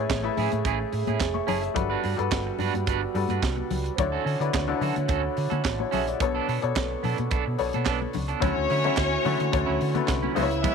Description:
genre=disco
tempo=108 BPM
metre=4/4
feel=straight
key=unclear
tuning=A4 = 437 Hz
part: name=clear grand piano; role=accompaniment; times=0.0-10.7 s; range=B2 to C#6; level=-29 LUFS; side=left 11 dB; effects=none
part: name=mellow French horn section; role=sustained chords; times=0.0-10.7 s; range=C#3 to C#5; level=-32 LUFS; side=right 16 dB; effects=none
part: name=hollow-body short-scale fingered electric bass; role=bass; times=0.0-10.6 s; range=F1 to D3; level=-30 LUFS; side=equal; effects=none
part: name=tight funk drum kit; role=drums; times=0.1-10.7 s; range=handclaps, hi-hat, kick drum, snare drum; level=-30 LUFS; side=right 3 dB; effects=none
part: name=congas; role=percussion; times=0.1-10.7 s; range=none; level=-35 LUFS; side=left 11 dB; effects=none
part: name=semi-hollow electric guitar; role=accompaniment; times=0.2-10.7 s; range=F#3 to B4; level=-32 LUFS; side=right 16 dB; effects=tremolo
part: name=rich studio violin section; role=second line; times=8.4-10.7 s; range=C#4 to E5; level=-28 LUFS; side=left 3 dB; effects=none
room=light reverb, studio ambience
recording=1960s-style stereo with parts hard left and right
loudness=-23 LUFS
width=side -6 dB against mid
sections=0.0-8.4 A section; 8.4-10.7 B section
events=none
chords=0.0 Amaj7; 1.8 Gmaj7; 4.0 Dmaj7; 6.2 Bm7; 8.4 Dmaj9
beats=0.09 0.65 1.20 | 1.76 2.31 2.87 3.42 | 3.98 4.53 5.09 5.64 | 6.20 6.75 7.31 7.86 | 8.42 8.97 9.53 10.09 | 10.64

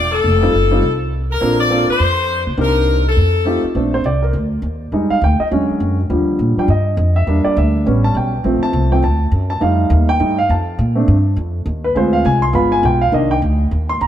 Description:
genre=jazz, big band swing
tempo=205 BPM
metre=4/4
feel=swing 61% on 8ths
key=Bb major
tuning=A4 = 440 Hz
part: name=edgy saxophone section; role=melody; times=0.0-3.7 s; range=A4 to D5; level=-17 LUFS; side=left 4 dB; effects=none
part: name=upright bass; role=bass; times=0.0-14.1 s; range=E1 to Bb2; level=-16 LUFS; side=equal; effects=none
part: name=warm baby grand piano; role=accompaniment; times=0.4-14.1 s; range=D3 to C6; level=-17 LUFS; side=right 1 dB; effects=none
room=moderate echo chamber reverb, RT60 2.2 s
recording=heard from further back in the room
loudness=-13 LUFS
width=side -10 dB against mid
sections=0.0-3.8 A section; 3.8-13.1 B section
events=grand piano solo 3.8-14.1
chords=0.2 F7; 1.4 Bbmaj7; 2.6 Cm7; 3.2 F9; 3.8 Bbmaj7; 4.9 Fm7; 5.5 E13; 6.1 Ebmaj7; 7.3 Em7b5; 7.9 A7; 8.4 Dm7; 9.6 F7; 10.8 Bbmaj7; 12.0 Dm7b5; 12.5 G7b9; 13.1 Cm7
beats=| 0.24 0.53 0.83 1.12 | 1.41 1.71 2.00 2.29 | 2.58 2.88 3.17 3.46 | 3.76 4.05 4.34 4.64 | 4.93 5.22 5.51 5.81 | 6.10 6.39 6.69 6.98 | 7.27 7.57 7.86 8.15 | 8.45 8.74 9.03 9.32 | 9.62 9.91 10.20 10.49 | 10.79 11.08 11.37 11.67 | 11.96 12.25 12.54 12.84 | 13.13 13.42 13.72 14.01

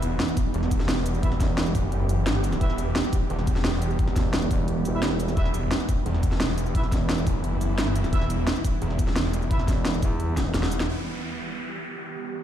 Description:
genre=dark technical drum and bass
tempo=174 BPM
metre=4/4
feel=straight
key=E minor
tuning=A4 = 439 Hz
part: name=swarming drone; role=sustained chords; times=0.0-12.4 s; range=E3 to G4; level=-30 LUFS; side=right 1 dB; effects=built-in reverb, sidechain pumping
part: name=snarling distorted saw bass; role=bass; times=0.0-10.9 s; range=E1 to G1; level=-26 LUFS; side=equal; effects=distortion, overdrive, sidechain pumping
part: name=drum and bass drum kit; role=drums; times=0.0-10.9 s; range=hi-hat, shaker, snare drum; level=-29 LUFS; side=right 1 dB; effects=overdrive, low-pass filter on hats, low-pass filter on snare, low-pass filter on perc, low-pass filter on room
part: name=electronic kick drum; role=drums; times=0.4-10.4 s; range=none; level=-24 LUFS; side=equal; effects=overdrive
part: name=warm brass ensemble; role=stabs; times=1.2-2.7, 4.9-9.6 s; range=E4 to E5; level=-36 LUFS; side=right 2 dB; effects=ping-pong delay
part: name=growling FM bass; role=bass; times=1.4-1.7, 4.2-7.3, 9.7-10.5 s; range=E1 to E2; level=-26 LUFS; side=equal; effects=none
part: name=downlifter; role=sound effects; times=10.9-12.4 s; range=none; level=-36 LUFS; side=right 1 dB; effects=none
room=little or no reverb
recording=played on a big sound system in a bare room, large studio reverb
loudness=-22 LUFS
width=side -10 dB against mid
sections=0.0-10.9 A section; 10.9-12.4 B section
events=drop 0.0-10.9; drum fill 10.4-10.9; band accent 10.8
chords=0.0 Em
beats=0.20 0.54 0.89 | 1.23 1.58 1.92 2.27 | 2.61 2.96 3.30 3.65 | 3.99 4.34 4.68 5.03 | 5.37 5.71 6.06 6.40 | 6.75 7.09 7.44 7.78 | 8.13 8.47 8.82 9.16 | 9.51 9.85 10.20 10.54 | 10.89 11.23 11.58 11.92 | 12.27

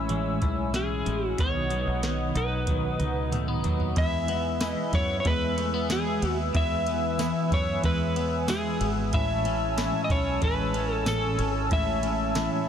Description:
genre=dream pop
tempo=93 BPM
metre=4/4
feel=straight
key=E major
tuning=A4 = 442 Hz
part: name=mellow electric guitar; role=accompaniment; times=0.0-12.7 s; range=A2 to E4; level=-33 LUFS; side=right 2 dB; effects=tremolo, lush chorus
part: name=hollow soft pad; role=sustained chords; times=0.0-12.7 s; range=B4 to E6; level=-33 LUFS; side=right 2 dB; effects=chorus
part: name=clean electric guitar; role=arpeggios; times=0.0-12.7 s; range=A2 to E4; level=-32 LUFS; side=left 5 dB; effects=analog chorus, ping-pong delay
part: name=fingered electric bass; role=bass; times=0.0-12.5 s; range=G#1 to F#2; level=-31 LUFS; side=equal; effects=none
part: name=soft vintage rhythm box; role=drums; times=0.1-12.5 s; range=hi-hat, kick drum, ride cymbal, snare drum, tambourine, toms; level=-30 LUFS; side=right 1 dB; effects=none
part: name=electric slide guitar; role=melody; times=0.8-12.7 s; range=G#4 to E5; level=-30 LUFS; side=equal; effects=ping-pong delay
room=light reverb, digital ambience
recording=dense, heavily limited modern master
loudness=-24 LUFS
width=side -8 dB against mid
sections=0.0-4.0 A section; 4.0-12.7 B section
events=drum fill 2.7-4.0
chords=0.0 Amaj7; 1.4 B; 4.0 E; 9.1 Amaj7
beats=0.10 0.74 | 1.39 2.03 2.68 3.32 | 3.97 4.61 5.26 5.90 | 6.55 7.19 7.84 8.48 | 9.13 9.77 10.42 11.06 | 11.71 12.35

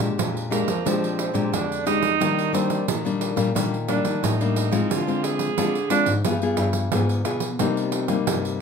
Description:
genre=samba and choro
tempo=89 BPM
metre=4/4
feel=straight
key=unclear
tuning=A4 = 437 Hz
part: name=nylon-string guitar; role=accompaniment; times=0.0-8.6 s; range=F2 to Ab4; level=-24 LUFS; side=left 5 dB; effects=none
part: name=nylon-string guitar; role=bass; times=0.0-8.6 s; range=G2 to F3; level=-27 LUFS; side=left 1 dB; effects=none
part: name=pandeiro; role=percussion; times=0.0-8.6 s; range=none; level=-27 LUFS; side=right 8 dB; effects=none
part: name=breathy tenor saxophone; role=second line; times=0.5-6.1 s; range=Bb3 to Ab4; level=-25 LUFS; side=right 7 dB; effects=none
room=moderate studio ambience, RT60 0.5 s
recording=none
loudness=-20 LUFS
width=side -6 dB against mid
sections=0.0-8.6 A section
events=tenor saxophone solo 0.0-8.6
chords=0.0 Bb13; 2.2 Ebmaj7; 4.9 Dm7b5; 6.3 G7b9; 7.6 Cm7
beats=0.19 0.86 1.53 | 2.21 2.88 3.56 4.23 | 4.91 5.58 6.25 6.93 | 7.60 8.27

